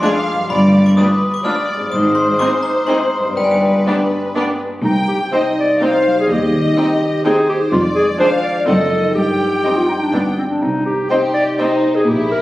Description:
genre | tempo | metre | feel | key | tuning
cinematic, playful, whimsical film cue | 125 BPM | 3/4 | straight | C minor | A4 = 440 Hz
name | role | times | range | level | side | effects
dark studio violin section | melody | 0.0-11.7 s | B4 to Ab5 | -23 LUFS | equal | none
glockenspiel with brass mallets | melody | 0.0-4.6 s | G5 to F6 | -21 LUFS | left 1 dB | none
rich studio violin section | second line | 0.0-12.4 s | Eb4 to G5 | -24 LUFS | left 1 dB | none
rich studio viola section | accompaniment | 0.0-11.7 s | G3 to Eb4 | -22 LUFS | equal | none
concert harp | arpeggios | 0.0-12.4 s | F2 to D5 | -20 LUFS | left 1 dB | none
rich studio cello section | bass | 0.5-12.4 s | C2 to C3 | -18 LUFS | equal | none
rich studio double bass section | bass | 0.5-12.4 s | F1 to Eb2 | -27 LUFS | right 1 dB | none
clear clarinet | second line | 4.8-12.4 s | B3 to D5 | -16 LUFS | equal | none
room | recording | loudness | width
wet scoring stage reverb, RT60 1.7 s | recorded on a phone in the room, club reverb, compression | -13 LUFS | side -16 dB against mid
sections
0.0-4.8 A section; 4.8-12.4 B section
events
none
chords
0.0 Ddim/F; 0.5 G7; 1.9 Ab; 3.4 G; 4.8 Cm; 6.3 Cm/Eb; 7.7 Ddim/F; 8.7 F#dim7; 9.2 Cm/G; 10.1 G; 10.6 Cm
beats
0.03 | 0.50 0.97 1.45 | 1.92 2.40 2.88 | 3.36 3.86 4.35 | 4.84 5.33 5.81 | 6.29 6.77 7.25 | 7.72 8.20 8.67 | 9.15 9.64 10.13 | 10.62 11.10 11.58 | 12.06

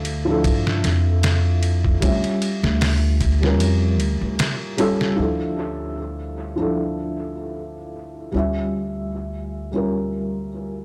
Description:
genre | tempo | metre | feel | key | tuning
trip hop | 76 BPM | 4/4 | swing 55% on 16ths | D harmonic minor | A4 = 440 Hz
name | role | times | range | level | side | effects
felt-muted upright piano | accompaniment | 0.0-10.8 s | F3 to E5 | -26 LUFS | equal | tremolo, tape echo
upright bass | bass | 0.0-10.8 s | D2 to G2 | -25 LUFS | equal | none
trip hop sampler-style drum kit | drums | 0.0-5.2 s | hi-hat, kick drum, ride cymbal, snare drum | -26 LUFS | equal | none
room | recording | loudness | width
digital ambience | dry, gritty hardware recording, transformer saturation, faint mains hum | -22 LUFS | mono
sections
0.0-5.2 A section; 5.2-10.8 B section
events
none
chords
0.0 Dmadd9; 2.0 A7b9b13/D (rootless); 5.2 Dmadd9; 8.3 Bb6/D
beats
0.44 1.23 | 2.02 2.81 3.60 4.39 | 5.18 5.97 6.76 7.55 | 8.34 9.13 9.92 10.71

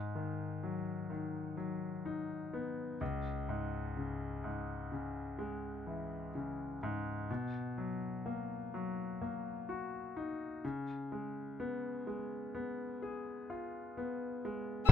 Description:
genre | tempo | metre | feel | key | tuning
pop | 63 BPM | 4/4 | straight | unclear | A4 = 440 Hz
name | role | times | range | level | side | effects
bright concert grand piano | accompaniment | 0.0-14.9 s | C#2 to G#4 | -38 LUFS | left 2 dB | none
room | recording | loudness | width
light reverb | band playing live in one room | -38 LUFS | side -9 dB against mid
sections
0.0-14.9 A section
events
none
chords
0.0 G#m7; 3.0 C#m; 7.3 Bmaj7; 10.6 C#7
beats
0.63 1.58 2.53 | 3.48 4.44 5.39 6.34 | 7.29 8.25 9.20 10.15 | 11.10 12.05 13.01 13.96 | 14.91

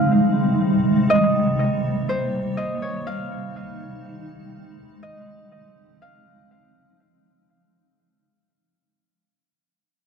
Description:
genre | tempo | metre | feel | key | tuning
hip hop | 122 BPM | 4/4 | half-time | unclear | A4 = 440 Hz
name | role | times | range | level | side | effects
concert harp | melody | 0.0-7.7 s | C5 to F5 | -25 LUFS | right 2 dB | low-pass filter, analog delay
granular cloud pad | sustained chords | 0.0-7.0 s | C3 to Eb4 | -20 LUFS | equal | built-in reverb
room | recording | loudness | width
light reverb | echo-heavy mix | -19 LUFS | side -6 dB against mid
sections
0.0-7.0 A section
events
fade-out 0.0-7.0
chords
0.0 Abmaj7; 1.1 Cm7; 3.1 Abmaj7; 5.0 Dbmaj9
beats
0.12 0.61 | 1.10 1.59 2.08 2.57 | 3.06 3.56 4.05 4.54 | 5.03 5.52 6.02 6.51

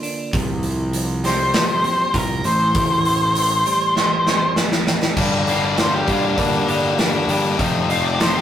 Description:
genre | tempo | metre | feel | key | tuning
quiet-loud alternative rock | 99 BPM | 4/4 | straight | unclear | A4 = 440 Hz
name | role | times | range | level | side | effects
clean electric guitar | arpeggios | 0.0-8.4 s | F2 to G4 | -26 LUFS | right 2 dB | none
big rock drum kit | drums | 0.0-8.3 s | crash cymbal, hi-hat, kick drum, snare drum | -22 LUFS | equal | none
fuzz fingered electric bass | bass | 0.3-8.4 s | F1 to G2 | -24 LUFS | equal | overdrive
octave-fuzz lead guitar | melody | 1.3-8.4 s | D4 to F5 | -19 LUFS | left 1 dB | distortion
distorted electric guitar | riff | 5.2-8.4 s | F2 to D4 | -19 LUFS | left 4 dB | overdrive
room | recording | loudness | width
moderate studio reverb, RT60 0.6 s | rough rehearsal-room recording, tube saturation | -16 LUFS | side -10 dB against mid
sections
0.0-5.2 A section; 5.2-8.4 B section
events
half time 0.0-5.2; drum fill 4.0-5.2; lead electric guitar solo 5.2-8.4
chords
0.3 Csus4; 2.4 Am7; 5.2 Gm; 7.6 F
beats
| 0.33 0.94 1.54 2.14 | 2.75 3.35 3.96 4.56 | 5.17 5.78 6.38 6.99 | 7.59 8.20

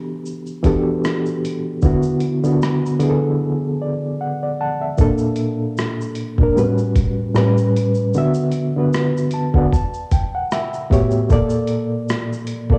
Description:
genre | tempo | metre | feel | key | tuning
lo-fi hip hop | 76 BPM | 4/4 | swing 55% on 16ths | D major | A4 = 440 Hz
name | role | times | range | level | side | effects
reed electric piano | accompaniment | 0.0-12.8 s | A2 to A5 | -20 LUFS | equal | fast tremolo, cassette tape, low-pass filter
boom bap sampler-style drum kit | drums | 0.3-12.8 s | hi-hat, kick drum, rim click, shaker | -22 LUFS | equal | none
room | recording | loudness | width
light reverb | home recording on cassette, studio reverb | -19 LUFS | mono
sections
0.0-5.0 A section; 5.0-12.8 B section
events
break 3.4-5.0; reed electric piano fill 8.9-11.3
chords
0.0 Em11; 1.8 D69; 5.0 Bbmaj7; 6.6 A13; 7.4 A9; 8.1 D69; 9.7 A13; 11.3 Bbmaj7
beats
0.25 1.04 | 1.83 2.62 3.40 4.20 | 4.98 5.77 6.56 7.35 | 8.14 8.93 9.72 10.51 | 11.30 12.09

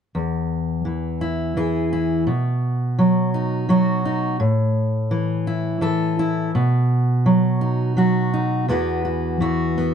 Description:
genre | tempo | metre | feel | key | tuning
folk, solo fingerstyle acoustic guitar | 84 BPM | 3/4 | straight | E major | A4 = 440 Hz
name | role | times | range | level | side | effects
fingerpicked steel-string acoustic guitar | solo | 0.1-9.9 s | E2 to B4 | -18 LUFS | equal | none
room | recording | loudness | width
moderate studio reverb, RT60 0.7 s | dark, warm production | -18 LUFS | side -8 dB against mid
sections
0.1-8.7 A section; 8.7-9.9 B section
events
none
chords
0.1 E; 2.3 B; 4.4 A5; 6.5 B; 8.7 Esus2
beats
| 0.13 0.84 1.56 | 2.27 2.98 3.69 | 4.40 5.11 5.82 | 6.54 7.25 7.97 | 8.69 9.41

